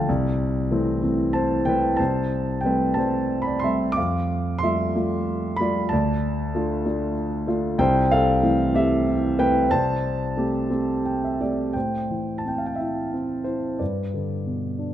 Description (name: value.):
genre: classical, lyrical solo piano.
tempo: 57-65 BPM (dotted quarters).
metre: 6/8.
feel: rubato.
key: A minor.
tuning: A4 = 439 Hz.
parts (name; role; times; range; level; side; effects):
dark baby grand piano; solo; 0.0-14.9 s; C2 to D6; -21 LUFS; equal; none.
room: moderate concert hall reverb, RT60 2.3 s.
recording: none.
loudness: -21 LUFS.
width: side -11 dB against mid.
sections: 0.0-11.8 A section; 11.8-14.9 B section.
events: grand piano fill 10.7-11.8.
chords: 0.1 C6; 2.0 Am7/C; 4.0 Fadd9; 5.9 Dm; 7.8 C6; 9.7 Am7/C; 11.8 Am7; 13.8 G.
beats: | 0.08 1.03 | 2.00 2.98 | 3.98 4.96 | 5.92 6.86 | 7.80 8.75 | 9.71 10.71 | 11.75 12.80 | 13.81 14.78.